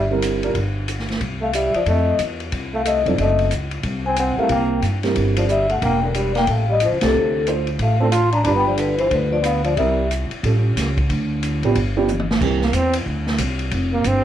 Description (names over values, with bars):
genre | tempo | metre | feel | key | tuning
jazz, small-group swing and bop | 182 BPM | 4/4 | swing 63% on 8ths | C mixolydian | A4 = 440 Hz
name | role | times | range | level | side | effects
vibraphone with medium mallets | melody | 0.0-10.1 s | A4 to C6 | -21 LUFS | left 5 dB | plate reverb
clear trombone | second line | 0.0-10.1, 12.6-14.2 s | C3 to F4 | -23 LUFS | right 2 dB | none
upright bass | bass | 0.0-14.2 s | E1 to G2 | -22 LUFS | equal | none
dark upright piano | accompaniment | 0.1-0.6, 3.1-12.6 s | E3 to C5 | -23 LUFS | right 5 dB | none
open jazz drum kit | drums | 0.2-14.1 s | crash cymbal, hi-hat, kick drum, ride cymbal, snare drum, toms | -26 LUFS | equal | none
room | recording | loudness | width
light reverb | worn, warbling old tape, cassette tape, warbly pitch drift | -17 LUFS | side -11 dB against mid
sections
0.0-12.4 A section; 12.4-14.2 B section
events
band accent 7.0; drum fill 12.1-12.4; trombone solo 12.4-14.2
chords
0.0 C7; 0.6 N.C.; 1.2 Cadd11; 1.9 F7; 3.2 F#dim7; 4.5 C7; 5.8 Em7b5; 6.5 Aaug; 7.1 Dm7; 8.5 G7; 9.8 C7; 10.4 Aaug7; 11.1 Dm; 11.8 G7; 12.4 C7; 13.7 F5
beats
0.23 | 0.56 0.89 1.22 1.54 | 1.87 2.20 2.53 2.86 | 3.19 3.52 3.85 4.17 | 4.50 4.83 5.16 5.49 | 5.82 6.15 6.48 6.81 | 7.14 7.47 7.80 8.13 | 8.46 8.79 9.12 9.45 | 9.78 10.11 10.44 10.77 | 11.10 11.43 11.75 12.08 | 12.41 12.74 13.07 13.40 | 13.73 14.06